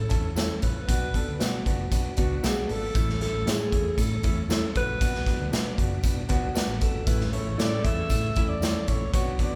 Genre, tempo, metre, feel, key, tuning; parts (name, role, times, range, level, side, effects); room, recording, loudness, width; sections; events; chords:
uptempo 1960s-style soul; 116 BPM; 4/4; straight; A major; A4 = 440 Hz
breathy alto saxophone; melody; 0.0-9.6 s; F#4 to E5; -34 LUFS; equal
tonewheel organ; sustained chords; 0.0-9.6 s; C#3 to D4; -42 LUFS; equal
vintage muted fingered electric bass; bass; 0.0-9.6 s; F#1 to B2; -34 LUFS; equal
warm concert grand piano; accompaniment; 0.1-9.6 s; A3 to B4; -36 LUFS; equal
raw garage drum kit; drums; 0.1-9.5 s; hi-hat, kick drum, snare drum; -28 LUFS; equal
electric guitar through a small old amp; stabs; 0.4-8.7 s; E4 to D5; -39 LUFS; equal; slapback echo
tambourine; percussion; 0.4-9.3 s; -47 LUFS; equal
warm horn section; second line; 7.1-9.6 s; C#3 to A4; -41 LUFS; equal
moderate large studio reverb, RT60 1.2 s; band playing live in one room; -26 LUFS; mono
0.0-9.6 A section
0.0 A; 0.9 Bm; 3.0 A; 5.0 Bm; 7.1 A